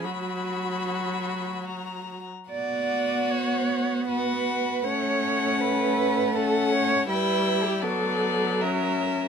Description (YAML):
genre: classical, slow romantic movement for string quartet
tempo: 71-82 BPM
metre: 3/4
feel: rubato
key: unclear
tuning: A4 = 439 Hz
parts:
  - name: rich violin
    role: melody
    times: 0.0-9.3 s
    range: D5 to B5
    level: -30 LUFS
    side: left 9 dB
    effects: none
  - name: dark viola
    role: accompaniment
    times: 0.0-9.3 s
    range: F#3 to B3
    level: -29 LUFS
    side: right 2 dB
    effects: none
  - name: dark cello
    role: bass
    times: 0.0-9.3 s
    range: F#4 to D5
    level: -28 LUFS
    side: right 3 dB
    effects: none
  - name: warm violin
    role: second line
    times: 0.1-9.3 s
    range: B3 to F#4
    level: -31 LUFS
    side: left 4 dB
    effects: none
room: light reverb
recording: none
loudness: -23 LUFS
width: side -6 dB against mid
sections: 0.0-9.3 A section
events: none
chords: 0.1 F#sus4; 2.5 Bm; 4.8 F#m/A; 7.1 Em/G; 7.8 Bm/F#; 8.6 F#7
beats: | 0.05 0.88 1.70 | 2.52 3.31 4.08 | 4.85 5.61 6.36 | 7.09 7.83 8.62